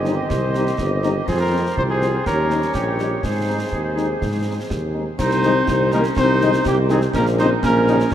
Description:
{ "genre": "military-style march for wind band", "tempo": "123 BPM", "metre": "2/4", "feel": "straight", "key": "Ab major", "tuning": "A4 = 439 Hz", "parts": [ { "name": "warm cornet", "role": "melody", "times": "0.0-8.1 s", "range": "G4 to C5", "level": "-24 LUFS", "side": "equal", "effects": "none" }, { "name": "clear woodwind section", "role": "second line", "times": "0.0-8.1 s", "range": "Bb3 to Eb5", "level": "-24 LUFS", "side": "right 3 dB", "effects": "none" }, { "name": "mellow French horn section", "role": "accompaniment", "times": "0.0-8.0 s", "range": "Db3 to Eb4", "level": "-27 LUFS", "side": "left 4 dB", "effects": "none" }, { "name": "clear trombone section", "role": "sustained chords", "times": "0.0-8.0 s", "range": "Eb3 to Eb4", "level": "-29 LUFS", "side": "left 1 dB", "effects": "none" }, { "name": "warm tuba", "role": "bass", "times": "0.0-8.1 s", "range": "G1 to Ab2", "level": "-21 LUFS", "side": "equal", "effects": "none" }, { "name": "concert snare drum, concert bass drum and clash cymbals", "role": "drums", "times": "0.1-8.1 s", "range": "none", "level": "-29 LUFS", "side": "equal", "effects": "none" }, { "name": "dark euphonium", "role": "second line", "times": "5.2-8.1 s", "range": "G3 to C4", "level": "-22 LUFS", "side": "left 3 dB", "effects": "none" } ], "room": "moderate cathedral reverb, RT60 5.4 s", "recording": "in a vast, echoing space", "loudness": "-17 LUFS", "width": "side -10 dB against mid", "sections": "0.0-5.2 A section; 5.2-8.1 B section", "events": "none", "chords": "0.0 Cm; 1.3 F5; 2.3 Eb7; 3.2 Ab; 5.2 Ab/C; 7.1 Eb7/Bb" }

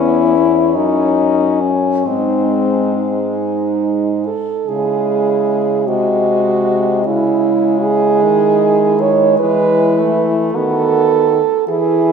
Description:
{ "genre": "classical, lyrical piece for horn quartet", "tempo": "44-54 BPM (dotted quarters)", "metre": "6/8", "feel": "rubato", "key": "C# minor", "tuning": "A4 = 440 Hz", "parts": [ { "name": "clear French horn", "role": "melody", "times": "0.0-12.1 s", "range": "B#3 to D#5", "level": "-18 LUFS", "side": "left 9 dB", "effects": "none" }, { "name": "mellow French horn", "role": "second line", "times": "0.0-12.1 s", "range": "B3 to C#5", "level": "-16 LUFS", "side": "right 7 dB", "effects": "none" }, { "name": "clear French horn", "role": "accompaniment", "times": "0.0-12.1 s", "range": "G#3 to E4", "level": "-20 LUFS", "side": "left 4 dB", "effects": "none" }, { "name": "warm French horn", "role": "bass", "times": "0.0-12.1 s", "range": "E2 to E3", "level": "-20 LUFS", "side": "equal", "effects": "none" } ], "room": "wet church reverb, RT60 2.7 s", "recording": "none", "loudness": "-12 LUFS", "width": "side -6 dB against mid", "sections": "0.0-4.7 A section; 4.7-12.1 B section", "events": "none", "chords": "0.0 C#m/E; 0.8 D#m7/F#; 2.1 G#; 4.7 C#m; 5.9 G#7/B#; 7.1 C#m; 9.4 E; 10.5 B7/D#" }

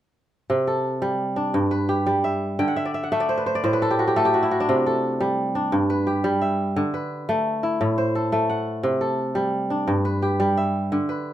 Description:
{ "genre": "west african traditional", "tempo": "115 BPM (dotted quarters)", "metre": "12/8", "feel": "straight", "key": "C lydian", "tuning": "A4 = 442 Hz", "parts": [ { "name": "kora", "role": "solo", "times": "0.5-11.3 s", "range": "G2 to G5", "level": "-20 LUFS", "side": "equal", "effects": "none" } ], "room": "moderate studio ambience, RT60 0.5 s", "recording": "minimal, uncompressed stereo recording", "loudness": "-20 LUFS", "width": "side -12 dB against mid", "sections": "0.5-11.3 A section", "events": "kora fill 2.6-4.7", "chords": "0.5 C5; 1.5 G; 2.6 D5; 3.6 N.C.; 4.7 C5; 5.7 G; 6.8 D5; 7.8 Am; 8.8 C5; 9.9 G" }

